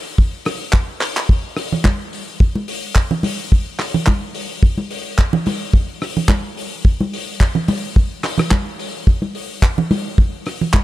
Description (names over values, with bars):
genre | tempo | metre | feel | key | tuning
nu-disco | 108 BPM | 4/4 | swing 54% on 16ths | none | none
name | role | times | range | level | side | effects
kick drum | drums | 0.2-10.8 s | none | -13 LUFS | equal | studio reverb
damped 70s drum kit | drums | 0.5-10.8 s | handclaps, hi-hat, rim click | -24 LUFS | left 1 dB | studio reverb
congas | percussion | 1.7-10.8 s | none | -21 LUFS | right 2 dB | none
room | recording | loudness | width
small room ambience | dark, warm production | -16 LUFS | side -16 dB against mid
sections
0.0-10.8 A section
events
drum fill 1.0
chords
none